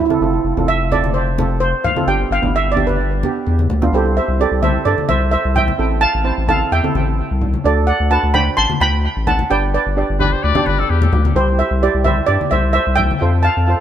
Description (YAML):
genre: calypso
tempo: 129 BPM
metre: 4/4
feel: straight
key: C major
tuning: A4 = 438 Hz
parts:
  - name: steel pan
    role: melody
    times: 0.0-13.8 s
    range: E4 to C6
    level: -17 LUFS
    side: right 3 dB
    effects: tape echo
  - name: steel pan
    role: accompaniment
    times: 0.1-13.8 s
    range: B3 to D5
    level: -23 LUFS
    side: right 5 dB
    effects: tape echo
  - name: congas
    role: percussion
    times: 0.1-13.2 s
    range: none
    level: -24 LUFS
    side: left 4 dB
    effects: tape echo
  - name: saturated sub bass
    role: bass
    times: 0.2-13.7 s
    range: F1 to G2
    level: -17 LUFS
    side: left 1 dB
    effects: none
  - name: clear trumpet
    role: second line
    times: 10.2-11.3 s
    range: G4 to D5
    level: -21 LUFS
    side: left 8 dB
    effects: tape echo
room: light reverb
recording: echo-heavy mix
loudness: -14 LUFS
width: side -10 dB against mid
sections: 0.0-3.9 A section; 3.9-13.8 B section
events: steel pan solo 0.0-3.9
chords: 0.2 F; 2.1 G; 3.9 C6; 5.8 Am7; 7.6 D7; 9.5 G; 11.4 C; 13.2 Fmaj7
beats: | 0.21 0.68 1.14 1.61 | 2.07 2.54 3.00 3.46 | 3.93 4.39 4.86 5.32 | 5.79 6.25 6.71 7.18 | 7.64 8.11 8.57 9.04 | 9.50 9.96 10.43 10.89 | 11.36 11.82 12.29 12.75 | 13.22 13.68